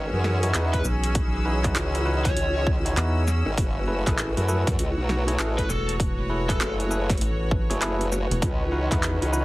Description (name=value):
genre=glitch hop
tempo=99 BPM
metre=4/4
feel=swing 62% on 16ths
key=F# dorian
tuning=A4 = 440 Hz
part: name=dark analog pad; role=sustained chords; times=0.0-9.4 s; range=E3 to C#5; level=-34 LUFS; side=left 1 dB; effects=chorus, sidechain pumping
part: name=formant-sweep wobble bass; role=bass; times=0.0-9.4 s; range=F#1 to F#2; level=-25 LUFS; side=equal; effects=chorus, overdrive
part: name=bright studio string section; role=texture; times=0.0-9.4 s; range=C#4 to E6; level=-33 LUFS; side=right 1 dB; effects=sidechain pumping
part: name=dubstep drum kit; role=drums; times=0.2-9.4 s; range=handclaps, hi-hat, shaker, snare drum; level=-29 LUFS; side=equal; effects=none
part: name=bell-like tine electric piano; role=stabs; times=0.4-9.4 s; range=D#4 to C#5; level=-31 LUFS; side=equal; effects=vintage 12-bit sampler grit, sidechain pumping, digital delay
part: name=lead guitar through a small cranked amp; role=melody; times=0.7-6.7 s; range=A4 to C#5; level=-33 LUFS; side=left 1 dB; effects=overdrive, digital delay
part: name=electronic kick drum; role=drums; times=0.7-9.0 s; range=none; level=-26 LUFS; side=equal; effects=none
part: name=rubbery square bass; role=bass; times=0.8-8.4 s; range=E1 to E2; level=-25 LUFS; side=equal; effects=none
room=little or no reverb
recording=heavily compressed radio sound, multiband compression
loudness=-22 LUFS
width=side -19 dB against mid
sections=0.0-9.4 A section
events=none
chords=0.0 C#m11; 3.6 F#m11; 8.4 C#m11